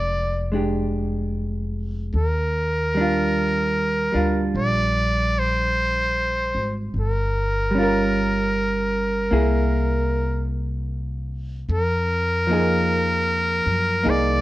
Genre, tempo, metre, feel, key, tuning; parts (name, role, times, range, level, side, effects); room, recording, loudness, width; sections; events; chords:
jazz ballad; 50 BPM; 4/4; swing 67% on 8ths; A4 = 441 Hz
trumpet with metal mute; melody; 0.0-14.4 s; Bb4 to D5; -23 LUFS; equal; plate reverb
vintage hollow-body jazz guitar; accompaniment; 0.0-14.4 s; F3 to Bb4; -24 LUFS; right 1 dB
upright bass; bass; 0.0-14.4 s; F1 to F#2; -25 LUFS; equal
light reverb; worn, warbling old tape, cassette tape, warbly pitch drift; -20 LUFS; side -16 dB against mid
0.0-14.4 A section
0.0 Bb6 (rootless); 2.1 Ebmaj9; 6.9 Gm7b5; 9.3 Caug7; 11.7 Fm7